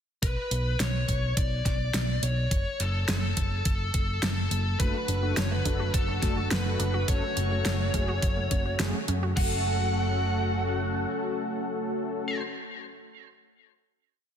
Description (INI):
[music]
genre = synthwave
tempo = 105 BPM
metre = 4/4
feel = straight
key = F# minor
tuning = A4 = 440 Hz
[part]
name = bluesy overdriven lead guitar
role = melody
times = 0.2-12.4 s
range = A4 to F#5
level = -33 LUFS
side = left 1 dB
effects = distortion, ping-pong delay
[part]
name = hollow-body short-scale picked electric bass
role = bass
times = 0.2-11.0 s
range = F#1 to F#2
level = -29 LUFS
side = equal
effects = none
[part]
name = electronic kick drum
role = drums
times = 0.2-9.5 s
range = none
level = -28 LUFS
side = equal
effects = none
[part]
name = pop drum kit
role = drums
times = 0.2-9.5 s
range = crash cymbal, hi-hat, snare drum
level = -32 LUFS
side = right 1 dB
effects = overdrive
[part]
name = lush unison pad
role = sustained chords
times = 4.8-12.4 s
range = C#3 to F#4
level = -36 LUFS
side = equal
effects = chorus, vintage 12-bit sampler grit, sidechain pumping
[part]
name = wide unison pluck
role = arpeggios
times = 4.8-9.6 s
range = F#3 to F#4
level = -39 LUFS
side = right 4 dB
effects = cassette tape, ping-pong delay
[part]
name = mellow synth brass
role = stabs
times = 4.8-12.4 s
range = A3 to A4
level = -34 LUFS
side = left 2 dB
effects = chorus, ping-pong delay
[sound]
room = light reverb, digital ambience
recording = dense, heavily limited modern master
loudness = -25 LUFS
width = side -8 dB against mid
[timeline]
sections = 0.2-9.4 verse; 9.4-11.7 final chord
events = none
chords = 0.2 Bm; 2.5 F#m; 4.8 D/F#; 7.1 F#m